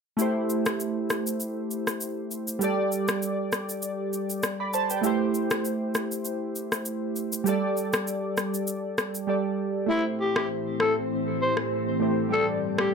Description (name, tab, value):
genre	afrobeats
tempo	99 BPM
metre	4/4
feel	swing 55% on 16ths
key	A minor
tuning	A4 = 440 Hz
part	warm analog keys	accompaniment	0.2-12.9 s	G3 to B5	-27 LUFS	right 2 dB	chorus
part	electronic shaker and rim click	drums	0.2-12.9 s	none	-28 LUFS	left 1 dB	overdrive
part	growling alto saxophone	melody	9.9-12.9 s	E4 to C5	-26 LUFS	left 2 dB	tape echo
part	glassy FM pad	sustained chords	10.1-12.9 s	G2 to D5	-29 LUFS	left 1 dB	ensemble chorus, built-in reverb
room	moderate studio reverb, RT60 0.5 s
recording	none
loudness	-25 LUFS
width	side -5 dB against mid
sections	0.2-9.9 A section; 9.9-12.9 B section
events	drums muted 9.3-9.9; hi-hats muted 9.9-12.9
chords	0.2 Am7; 2.6 Gsus2; 5.0 Am7; 7.5 Gsus2; 9.9 Am7; 12.3 Gsus2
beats	| 0.19 0.80 1.40 2.01 | 2.62 3.22 3.83 4.43 | 5.04 5.65 6.25 6.86 | 7.46 8.07 8.68 9.28 | 9.89 10.49 11.10 11.71 | 12.31 12.92